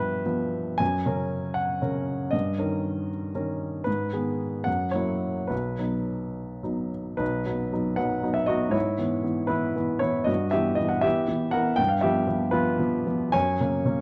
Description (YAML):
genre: classical, romantic character piece for solo piano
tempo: 69-82 BPM (dotted quarters)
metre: 6/8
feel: rubato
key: B major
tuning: A4 = 437 Hz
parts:
  - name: warm baby grand piano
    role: solo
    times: 0.0-14.0 s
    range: B1 to G#5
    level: -26 LUFS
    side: equal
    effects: none
room: light reverb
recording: close, detailed microphones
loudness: -26 LUFS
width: mono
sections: 0.0-7.2 A section; 7.2-14.0 A section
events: none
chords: 0.0 G7; 0.8 F#; 2.3 D#7/G; 3.9 G#m; 4.7 F#7; 5.5 B; 8.7 E/G#; 10.3 Em/G; 11.8 G7; 13.3 F#